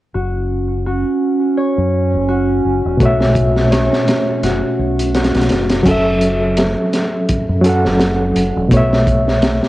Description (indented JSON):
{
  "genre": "trip hop",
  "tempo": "84 BPM",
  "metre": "4/4",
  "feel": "swing 56% on 16ths",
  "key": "F# minor",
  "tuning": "A4 = 437 Hz",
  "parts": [
    { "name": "Celtic harp", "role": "arpeggios", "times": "0.1-7.6 s", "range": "F#4 to C#5", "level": "-21 LUFS", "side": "left 4 dB", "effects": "low-pass filter, cassette tape, tape echo" },
    { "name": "deep dub fingered electric bass", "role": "bass", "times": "0.1-9.6 s", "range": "E1 to F#2", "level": "-19 LUFS", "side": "equal", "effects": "none" },
    { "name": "warbly tape-like pad", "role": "sustained chords", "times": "0.4-5.9 s", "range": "C#4", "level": "-20 LUFS", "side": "right 5 dB", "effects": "chorus, built-in reverb, cassette tape" },
    { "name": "overdriven reed electric piano", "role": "accompaniment", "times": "3.0-9.7 s", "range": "B2 to F#5", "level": "-15 LUFS", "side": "equal", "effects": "fast tremolo, harmonic tremolo, cassette tape, tape echo" },
    { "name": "crunchy breakbeat drum kit", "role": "drums", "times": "3.0-9.7 s", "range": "crash cymbal, hi-hat, kick drum, snare drum", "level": "-18 LUFS", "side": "equal", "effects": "cassette tape" }
  ],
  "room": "light reverb",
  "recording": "home recording on cassette",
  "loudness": "-13 LUFS",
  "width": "side -16 dB against mid",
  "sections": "0.1-5.9 A section; 5.9-9.7 B section",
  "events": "none",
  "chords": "0.1 F#5; 3.0 B9sus4; 5.9 F#m7; 8.7 B9sus4"
}